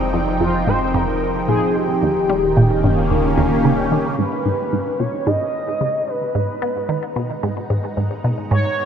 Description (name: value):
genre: ambient, sequencer-driven space music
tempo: 111 BPM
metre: 4/4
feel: straight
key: G# minor from 4.2 s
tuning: A4 = 440 Hz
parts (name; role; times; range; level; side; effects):
- lush unison pad; sustained chords; 0.0-8.9 s; Eb3 to A#5; -22 LUFS; equal; chorus, phaser
- round analog bass; bass; 0.0-4.2 s; Eb1 to F1; -27 LUFS; equal; none
- resonant blip pluck; riff; 0.1-8.6 s; Eb2 to B3; -20 LUFS; right 1 dB; phaser, tape echo
- expressive synth lead; melody; 0.4-8.9 s; F4 to D#5; -22 LUFS; equal; analog chorus, tape echo
room: wet huge ambient reverb, RT60 6.9 s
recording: none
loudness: -17 LUFS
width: side -8 dB against mid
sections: 0.0-4.2 A section; 4.2-8.9 B section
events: fade-in on analog synth pad 4.2-8.9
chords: 0.0 Fm7; 2.0 Eb7; 4.2 G#m7